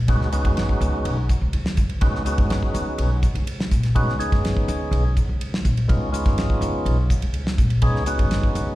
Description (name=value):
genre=electric jazz fusion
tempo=124 BPM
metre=4/4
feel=straight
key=Db mixolydian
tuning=A4 = 440 Hz
part: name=upright bass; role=bass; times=0.0-8.7 s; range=Ab1 to Bb2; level=-22 LUFS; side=equal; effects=none
part: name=percussive tonewheel organ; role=accompaniment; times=0.1-8.8 s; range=Ab3 to Ab4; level=-26 LUFS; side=equal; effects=slow rotary speaker, plate reverb, slapback echo
part: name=damped 70s drum kit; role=drums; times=0.1-8.7 s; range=hi-hat, kick drum, ride cymbal, snare drum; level=-22 LUFS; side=equal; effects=none
room=little or no reverb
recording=live gig heard through the venue's PA, recital hall reverb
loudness=-19 LUFS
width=side -16 dB against mid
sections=0.0-8.8 A section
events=none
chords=0.0 Db9sus4